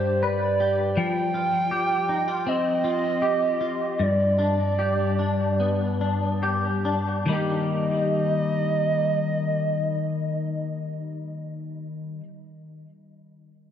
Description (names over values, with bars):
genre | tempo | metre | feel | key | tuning
dream pop | 69-81 BPM | 4/4 | straight | Eb major | A4 = 439 Hz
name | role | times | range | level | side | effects
hollow clarinet-like synth lead | melody | 0.0-11.5 s | C5 to G5 | -25 LUFS | right 3 dB | chorus, phaser, digital delay
clean electric guitar | arpeggios | 0.0-12.3 s | G2 to B4 | -25 LUFS | left 2 dB | ensemble chorus, digital delay
room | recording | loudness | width
wet huge ambient reverb, RT60 5.0 s | none | -22 LUFS | side -9 dB against mid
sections
0.0-7.3 A section; 7.3-10.8 B section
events
slowing down 1.0-7.3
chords
0.0 G; 1.0 Fsus2; 4.0 G; 7.3 Eb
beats
0.23 | 0.97 1.71 2.46 3.22 | 3.99 4.78 5.59 6.42 | 7.27 8.14 9.02 9.89